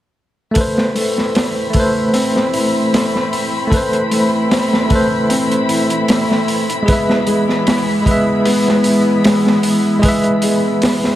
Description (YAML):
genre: trip hop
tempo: 76 BPM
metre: 4/4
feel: swing 54% on 16ths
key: A harmonic minor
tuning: A4 = 441 Hz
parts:
  - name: bell-like tine electric piano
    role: accompaniment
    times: 0.5-11.2 s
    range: G#3 to E5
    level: -16 LUFS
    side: equal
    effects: tremolo, vintage 12-bit sampler grit, tape echo
  - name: warm chamber string section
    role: sustained chords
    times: 0.6-11.2 s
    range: G#3 to B5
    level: -20 LUFS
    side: equal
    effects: none
  - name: crunchy breakbeat drum kit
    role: drums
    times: 0.6-11.2 s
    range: hi-hat, kick drum, snare drum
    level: -18 LUFS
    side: equal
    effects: none
  - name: bowed-like drone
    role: texture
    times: 0.9-11.2 s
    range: E3 to E4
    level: -26 LUFS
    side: equal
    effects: built-in reverb
  - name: felt-muted upright piano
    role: arpeggios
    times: 1.0-11.2 s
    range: G#3 to E4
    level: -20 LUFS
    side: left 2 dB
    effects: vintage 12-bit sampler grit, low-pass filter, tape echo
room: light reverb, small room ambience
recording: none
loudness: -12 LUFS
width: side -13 dB against mid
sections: 0.6-11.2 A section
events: none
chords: 0.6 Amadd9; 6.9 E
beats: | 0.56 1.35 2.14 2.93 | 3.72 4.51 5.30 6.09 | 6.88 7.67 8.46 9.24 | 10.04 10.82